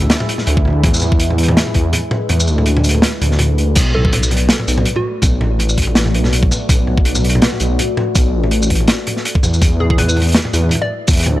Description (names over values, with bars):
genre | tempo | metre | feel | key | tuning
half-time drum and bass | 164 BPM | 4/4 | swing 55% on 16ths, half-time | B dorian | A4 = 440 Hz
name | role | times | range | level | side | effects
deep dark ambient pad | sustained chords | 0.0-11.4 s | G#3 to E5 | -24 LUFS | left 2 dB | chorus, built-in reverb, vintage 12-bit sampler grit, sidechain pumping
dark detuned saw bass | bass | 0.0-11.4 s | A1 to E2 | -15 LUFS | equal | none
crunchy breakbeat drum kit | drums | 0.0-11.3 s | crash cymbal, hi-hat, shaker, snare drum, toms | -17 LUFS | equal | none
electronic kick drum | drums | 0.6-11.2 s | none | -14 LUFS | equal | overdrive
hollow square pluck | melody | 3.9-5.3, 9.8-11.1 s | F#4 to D5 | -24 LUFS | equal | chorus, analog delay
room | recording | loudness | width
studio reverb | dry, gritty hardware recording, transformer saturation | -12 LUFS | side -16 dB against mid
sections
0.0-3.8 A section; 3.8-11.4 A section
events
drop 0.0-3.8, 3.8-11.4; kick drops out 2.3-3.8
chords
0.0 E; 3.8 Bm7; 9.6 E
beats
0.10 0.47 | 0.84 1.20 1.57 1.93 | 2.30 2.67 3.03 3.40 | 3.76 4.13 4.50 4.86 | 5.23 5.59 5.96 6.32 | 6.69 7.06 7.42 7.79 | 8.15 8.52 8.88 9.25 | 9.62 9.98 10.35 10.71 | 11.08